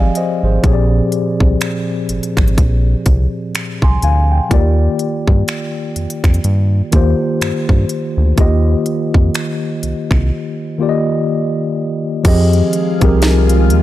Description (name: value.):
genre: contemporary R&B.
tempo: 62 BPM.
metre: 4/4.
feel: swing 58% on 16ths.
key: unclear.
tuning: A4 = 441 Hz.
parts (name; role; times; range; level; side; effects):
mellow tine electric piano; accompaniment; 0.0-13.8 s; Bb2 to C6; -17 LUFS; left 1 dB; slow stereo tremolo.
round analog bass; bass; 0.0-13.8 s; Ab1 to G2; -14 LUFS; equal; none.
trap drum kit; drums; 0.2-13.8 s; crash cymbal, finger snaps, hi-hat, kick drum, snare drum; -15 LUFS; equal; none.
glassy FM pad; sustained chords; 12.5-13.8 s; Eb3 to F4; -20 LUFS; left 2 dB; ensemble chorus, built-in reverb.
room: digital ambience.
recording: none.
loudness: -12 LUFS.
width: side -14 dB against mid.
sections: 0.0-12.2 A section; 12.2-13.8 B section.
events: break 10.3-12.2.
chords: 0.0 Fm7; 0.6 Bb13; 4.5 Ebmaj7; 12.2 Fm7.